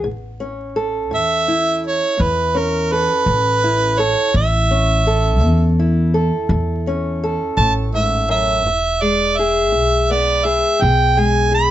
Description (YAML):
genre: acoustic country blues, solo or duo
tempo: 56 BPM (dotted quarters)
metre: 12/8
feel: straight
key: unclear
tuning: A4 = 438 Hz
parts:
  - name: fingerpicked old ladder-braced acoustic guitar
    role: accompaniment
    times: 0.0-11.7 s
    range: E2 to A4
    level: -21 LUFS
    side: left 1 dB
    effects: none
  - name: upright bass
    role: bass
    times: 0.0-11.7 s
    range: E1 to E2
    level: -19 LUFS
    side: equal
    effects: none
  - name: warm harmonica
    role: melody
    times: 1.1-11.7 s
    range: A#4 to B5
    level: -16 LUFS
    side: right 2 dB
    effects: none
room: light reverb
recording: vinyl crackle, nothing above 7.8 kHz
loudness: -14 LUFS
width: side -12 dB against mid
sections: 0.0-11.7 A section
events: none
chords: 0.1 A; 8.7 E